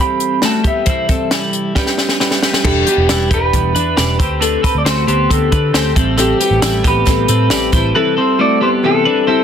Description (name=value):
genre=jangly indie pop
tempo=136 BPM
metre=4/4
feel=straight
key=E minor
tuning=A4 = 441 Hz
part: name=electric guitar through a small old amp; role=melody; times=0.0-9.4 s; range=G4 to B5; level=-17 LUFS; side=equal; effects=digital delay
part: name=semi-hollow electric guitar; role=accompaniment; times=0.0-9.4 s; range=A2 to B4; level=-22 LUFS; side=right 9 dB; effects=tube saturation, wide subtle chorus
part: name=twelve-string electric guitar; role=arpeggios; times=0.0-9.4 s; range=G3 to D5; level=-19 LUFS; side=left 3 dB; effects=none
part: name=compact cocktail drum kit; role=drums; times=0.2-7.8 s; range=crash cymbal, hi-hat, kick drum, snare drum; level=-16 LUFS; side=equal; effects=none
part: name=vintage muted picked electric bass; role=bass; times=2.6-7.9 s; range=E1 to D3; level=-17 LUFS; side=equal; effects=none
part: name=dark upright piano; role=accompaniment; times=6.2-9.4 s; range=C4 to A4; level=-21 LUFS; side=left 6 dB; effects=none
part: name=tambourine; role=percussion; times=6.2-7.8 s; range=none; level=-28 LUFS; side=right 13 dB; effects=none
room=small room ambience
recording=dense, heavily limited modern master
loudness=-12 LUFS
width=side -8 dB against mid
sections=0.0-2.6 A section; 2.6-9.4 B section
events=drum fill 1.8-2.6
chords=0.0 Am7; 0.9 C6; 1.8 Em7; 4.2 D7sus4; 6.0 Am7; 8.0 C6